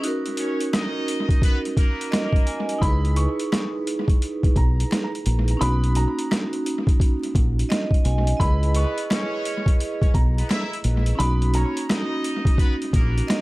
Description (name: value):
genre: hip hop, boom-bap hip-hop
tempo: 86 BPM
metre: 4/4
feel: swing 62% on 16ths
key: unclear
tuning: A4 = 440 Hz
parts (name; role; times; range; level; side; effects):
- vibraphone with medium hard mallets; accompaniment; 0.0-13.4 s; A#3 to G#5; -27 LUFS; right 2 dB; high-pass filter, low-pass filter, analog delay
- boom bap sampler-style drum kit; drums; 0.0-13.4 s; hi-hat, kick drum, rim click, snare drum; -22 LUFS; equal; overdrive, analog delay
- muted trumpet section; stabs; 0.4-2.3, 8.8-13.4 s; A#3 to E5; -32 LUFS; left 1 dB; high-pass filter, low-pass filter, analog delay
- finger snaps; percussion; 0.7-13.4 s; none; -40 LUFS; left 4 dB; none
- dark upright piano; melody; 2.8-12.1 s; A#5 to C#6; -32 LUFS; right 1 dB; high-pass filter, low-pass filter, analog delay
- deep dub fingered electric bass; bass; 2.8-13.2 s; A#1 to C#2; -20 LUFS; equal; none
room: small room ambience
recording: echo-heavy mix, vinyl crackle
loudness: -19 LUFS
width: side -20 dB against mid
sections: 0.0-13.4 A section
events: break 0.0-2.8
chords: 0.0 Bmaj7 (rootless); 2.8 C#m7; 5.6 Bmaj7; 8.4 C#m7; 11.2 Bmaj7